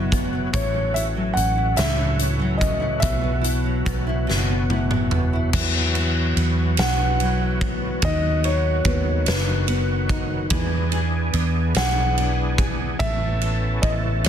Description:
six-eight pop ballad; 48 BPM (dotted quarters); 6/8; straight; E major; A4 = 440 Hz
nylon-string guitar; accompaniment; 0.0-14.3 s; A2 to A4; -27 LUFS; equal; double-tracked left and right
overdriven tonewheel organ; sustained chords; 0.0-14.3 s; D#3 to A4; -29 LUFS; equal; chorus vibrato, slow rotary speaker
vintage muted fingered electric bass; bass; 0.0-14.3 s; F#1 to E2; -23 LUFS; equal
huge arena drum kit; drums; 0.1-14.3 s; crash cymbal, hi-hat, kick drum, ride cymbal, snare drum, toms; -24 LUFS; equal
dark grand piano; melody; 0.5-14.3 s; B4 to F#5; -26 LUFS; equal
light reverb; dense, heavily limited modern master; -19 LUFS; side -9 dB against mid
0.0-5.5 A section; 5.5-14.3 B section
drum fill 4.3-5.5
0.0 Bsus4; 0.5 F#m7/A; 3.0 Bsus4; 5.5 Esus2; 8.0 B/D#; 10.5 E7; 13.0 Aadd9

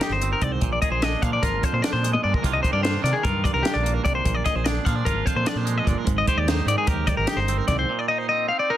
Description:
math rock and midwest emo; 297 BPM (eighths); 9/8; straight; A4 = 440 Hz
twangy electric guitar; accompaniment; 0.0-8.8 s; F2 to Ab4; -29 LUFS; right 12 dB
clean electric guitar; arpeggios; 0.0-8.8 s; G4 to F5; -24 LUFS; left 4 dB
compact cocktail drum kit; drums; 0.0-7.8 s; hi-hat, kick drum, snare drum, toms; -25 LUFS; equal
overdriven picked electric bass; bass; 0.1-7.8 s; G1 to C3; -26 LUFS; equal
little or no reverb; dense, heavily limited modern master; -20 LUFS; side -12 dB against mid
0.0-8.8 A section
drum fill 2.1-2.4
0.0 Abmaj9; 0.6 Bb9; 2.4 Cm11; 4.3 Bb9; 6.1 Abmaj9; 7.9 Bbsus4

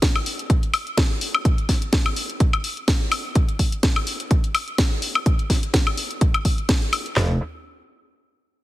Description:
bass house; 126 BPM; 4/4; swing 55% on 16ths; A4 = 440 Hz
house drum kit; drums; 0.0-7.3 s; handclaps, kick drum, snare drum, toms; -19 LUFS; equal
house drum kit; drums; 0.0-7.1 s; hi-hat, snare drum, woodblock; -23 LUFS; left 1 dB
metallic wobble bass; bass; 7.2-7.4 s; F1; -20 LUFS; equal; chorus, sidechain pumping
light reverb; heavily compressed radio sound; -19 LUFS; side -16 dB against mid
0.0-7.2 A section; 7.2-8.6 B section

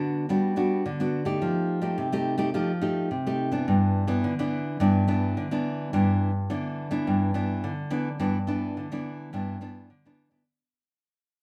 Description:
samba; 106 BPM; 4/4; straight; G major; A4 = 440 Hz
nylon-string guitar; solo; 0.0-10.4 s; G2 to G4; -27 LUFS; equal
wet large studio reverb, RT60 0.8 s; band playing live in one room; -27 LUFS; mono
0.0-8.2 A section; 8.2-10.5 B section
fade-out 8.2-10.5
0.0 Gmaj7; 1.4 F9; 3.7 G6

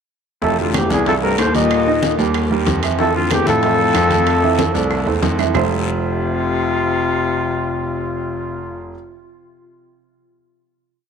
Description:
Afro-Cuban jazz; 187 BPM; 4/4; straight; F major; A4 = 437 Hz
growling trumpet; melody; 0.4-8.9 s; F4 to Eb5; -20 LUFS; right 1 dB
breathy baritone saxophone; second line; 0.4-8.9 s; D2 to C3; -22 LUFS; left 10 dB
warm upright piano; accompaniment; 0.4-8.9 s; Eb3 to E5; -22 LUFS; right 10 dB
clear concert grand piano; bass; 0.4-8.9 s; F1 to A2; -21 LUFS; right 1 dB
bongos; percussion; 0.4-5.6 s; -27 LUFS; left 10 dB
congas; percussion; 0.4-5.6 s; -26 LUFS; left 1 dB
guiro; percussion; 0.4-5.6 s; -32 LUFS; left 14 dB
claves; percussion; 0.7-5.6 s; -31 LUFS; right 12 dB
timbales; percussion; 0.7-5.6 s; -28 LUFS; right 12 dB
moderate plate reverb, RT60 2.8 s; 1960s-style stereo with parts hard left and right; -15 LUFS; side -6 dB against mid
0.4-5.5 A section; 5.5-8.1 final chord
drum fill 4.6-5.5
0.4 Fmaj7; 1.7 Ebadd9; 3.0 Fmaj7

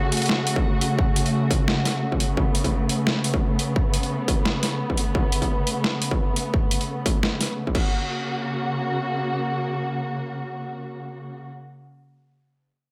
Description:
half-time drum and bass; 173 BPM; 4/4; swing 56% on 16ths, half-time; F# minor; A4 = 440 Hz
muted studio string section; sustained chords; 0.0-11.5 s; C#3 to F#4; -28 LUFS; equal; sidechain pumping
boom bap sampler-style drum kit; drums; 0.1-7.8 s; crash cymbal, hi-hat, snare drum; -28 LUFS; equal; overdrive, studio ambience
electronic kick drum; drums; 0.6-7.8 s; -25 LUFS; equal; distortion, studio ambience
moderate echo chamber reverb, RT60 1.3 s; -24 LUFS; mono
0.0-7.9 A section; 7.9-10.7 B section
0.0 F#m; 7.7 F#

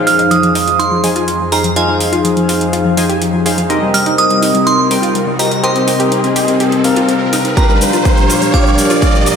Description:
progressive house; 124 BPM; 4/4; straight; F minor; A4 = 441 Hz
airy breathy pad; sustained chords; 0.0-9.4 s; F2 to Bb4; -19 LUFS; left 1 dB; chorus, sidechain pumping
analog pluck; arpeggios; 0.0-9.3 s; F3 to Ab4; -18 LUFS; left 1 dB; chorus, sidechain pumping, diffuse ambient delay
chorused polysynth; stabs; 0.0-9.4 s; C4 to Ab5; -16 LUFS; left 2 dB; sidechain pumping, diffuse ambient delay
riser; sound effects; 2.0-9.4 s; -21 LUFS; right 1 dB
glassy synth bell; melody; 0.1-9.4 s; Ab5 to F6; -17 LUFS; right 4 dB; chorus, phaser, sidechain pumping, low-pass filter, diffuse ambient delay
electronic hi-hat and shaker; drums; 0.1-9.4 s; -21 LUFS; equal; sidechain pumping on hats, sidechain pumping on perc
electronic kick drum; drums; 7.6-9.1 s; -12 LUFS; equal
wet lush hall reverb, RT60 1.6 s, digital ambience; dreamy mix soaked in reverb; -10 LUFS; side -7 dB against mid
0.0-9.4 A section
build-up 0.0-9.4; filter sweep on synth pluck 0.0-9.4; filter sweep on analog polysynth 0.0-9.4; riser 2.0-9.4; drum fill 7.6-9.4
0.0 Fm7; 3.7 Cm7; 7.6 Gm7/Bb

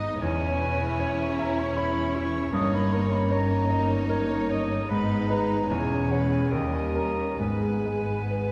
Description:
classical, romantic movement for piano and orchestra; 66-80 BPM; 3/4; rubato; A4 = 440 Hz
bright concert grand piano; melody; 0.0-8.5 s; D#2 to E5; -31 LUFS; equal
rich studio violin section; melody; 0.0-8.5 s; A#4 to D#5; -40 LUFS; equal
bright clarinet; second line; 0.0-8.5 s; A#4 to D#5; -39 LUFS; equal
rich symphonic violin section; second line; 0.0-8.5 s; B3 to E4; -38 LUFS; equal
rich symphonic viola section; accompaniment; 0.0-8.5 s; G3 to C#4; -37 LUFS; equal
mellow French horn section; sustained chords; 0.0-8.5 s; B3 to G#4; -35 LUFS; equal
bright symphonic double bass section; bass; 0.0-8.5 s; E1 to D#2; -36 LUFS; equal
warm chamber cello section; bass; 0.0-8.5 s; D#2 to G#2; -34 LUFS; equal
silver concert flute; second line; 0.2-8.5 s; F#5 to D#6; -35 LUFS; equal
wet scoring stage reverb, RT60 1.5 s; heard from further back in the room; -26 LUFS; mono
0.0-8.5 A section
0.2 C#m/E; 2.5 D#7/G; 4.9 G#m; 5.7 C#m/E; 6.5 D#7; 7.4 G#m

